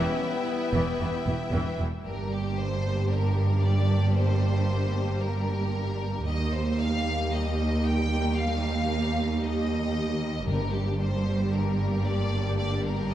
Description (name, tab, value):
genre	cinematic, epic orchestral film score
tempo	114 BPM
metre	4/4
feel	straight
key	unclear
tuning	A4 = 440 Hz
part	rich studio violin section	melody	0.0-13.1 s	G4 to G5	-34 LUFS	left 2 dB	none
part	mellow hollow concert flute	second line	0.0-1.8 s	B4	-35 LUFS	left 2 dB	none
part	warm symphonic violin section	second line	0.0-13.1 s	D4 to G5	-39 LUFS	left 3 dB	none
part	rich symphonic viola section	accompaniment	0.0-13.1 s	E3 to E4	-34 LUFS	left 1 dB	none
part	clear symphonic string section	sustained chords	0.0-2.0 s	B3 to G5	-40 LUFS	left 2 dB	none
part	mellow French horn section	sustained chords	0.0-12.8 s	G3 to B3	-41 LUFS	left 5 dB	none
part	warm trombone section	sustained chords	0.0-1.8 s	E3 to G3	-40 LUFS	right 3 dB	none
part	mellow trumpet section	stabs	0.0-1.7 s	B3	-41 LUFS	equal	none
part	rich studio double bass section	bass	0.0-13.1 s	E1 to Eb2	-29 LUFS	right 3 dB	none
part	rich symphonic cello section	bass	0.0-13.1 s	Eb2 to G2	-28 LUFS	right 1 dB	none
part	timpani	percussion	10.5-11.2 s	G2	-35 LUFS	left 1 dB	none
room	moderate scoring stage reverb, RT60 2.0 s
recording	none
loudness	-24 LUFS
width	side -12 dB against mid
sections	0.0-2.0 A section; 2.0-13.1 B section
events	none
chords	0.0 Em; 2.0 Gm; 6.3 Eb; 10.5 Gm